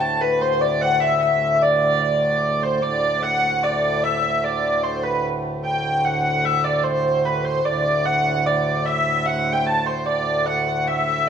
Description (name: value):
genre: medieval dance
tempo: 149 BPM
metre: 3/4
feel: straight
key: D mixolydian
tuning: A4 = 441 Hz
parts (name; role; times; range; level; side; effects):
- rich hurdy-gurdy; melody; 0.0-11.3 s; B4 to A5; -20 LUFS; right 1 dB; none
- vibraphone with medium hard mallets; second line; 0.0-2.6 s; B4 to A5; -21 LUFS; left 4 dB; none
- hand-pumped harmonium; drone; 0.0-11.3 s; D2 to A2; -25 LUFS; right 1 dB; none
room: wet recital hall reverb, RT60 1.7 s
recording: dark, warm production, nothing above 10.7 kHz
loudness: -18 LUFS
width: side -8 dB against mid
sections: 0.0-2.8 A section; 2.8-11.3 B section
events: none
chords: none